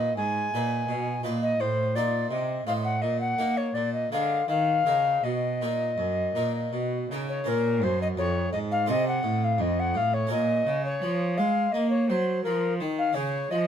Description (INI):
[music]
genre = classical, baroque-style sonata movement with continuo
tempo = 84 BPM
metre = 4/4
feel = straight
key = Eb minor, Bb minor from 7.5 s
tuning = A4 = 442 Hz
[part]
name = alto recorder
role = melody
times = 0.0-13.7 s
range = Bb4 to Ab5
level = -26 LUFS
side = left 2 dB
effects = none
[part]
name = harpsichord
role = accompaniment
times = 0.0-13.7 s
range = F2 to C5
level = -32 LUFS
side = right 1 dB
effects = none
[part]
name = rich cello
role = bass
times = 0.0-13.7 s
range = F2 to Bb3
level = -29 LUFS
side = right 2 dB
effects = none
[sound]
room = light reverb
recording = minimal, uncompressed stereo recording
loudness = -24 LUFS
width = side -8 dB against mid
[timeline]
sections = 0.0-7.5 A section; 7.5-13.7 A section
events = none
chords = 0.2 Abmadd9; 1.6 Adim; 3.0 Ebm/Bb; 3.8 Bb7; 4.5 Ebm; 7.5 Bbm; 8.9 F; 10.3 Bbm; 13.2 Db